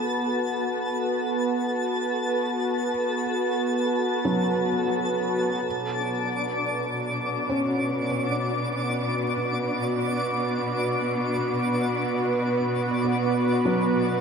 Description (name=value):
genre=ambient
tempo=free time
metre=none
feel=none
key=B minor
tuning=A4 = 436 Hz
part: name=warm analog pad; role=sustained chords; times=0.0-14.2 s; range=B3 to B4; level=-26 LUFS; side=right 1 dB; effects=chorus
part: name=felt-muted upright piano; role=arpeggios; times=0.0-14.2 s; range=F#3 to B5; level=-31 LUFS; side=equal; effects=tape echo
part: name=overtone-sweeping drone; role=drone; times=0.0-5.7, 12.8-14.2 s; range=B3 to B4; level=-32 LUFS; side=right 1 dB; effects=chorus, built-in reverb, phaser
part: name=twinkling granular texture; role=texture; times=0.0-14.2 s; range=D4 to D6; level=-29 LUFS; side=left 1 dB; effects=built-in reverb
part: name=warm symphonic cello section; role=bass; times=5.6-14.2 s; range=B2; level=-30 LUFS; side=left 1 dB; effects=none
room=wet huge ambient reverb, RT60 8.7 s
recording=none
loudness=-23 LUFS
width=side -6 dB against mid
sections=0.0-5.7 A section; 5.7-14.2 B section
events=fade-in on analog synth pad 5.7-14.2; fade-out on felt piano 5.7-14.2; fade-out on synth texture 5.7-14.2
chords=0.0 B5; 5.7 Bmadd9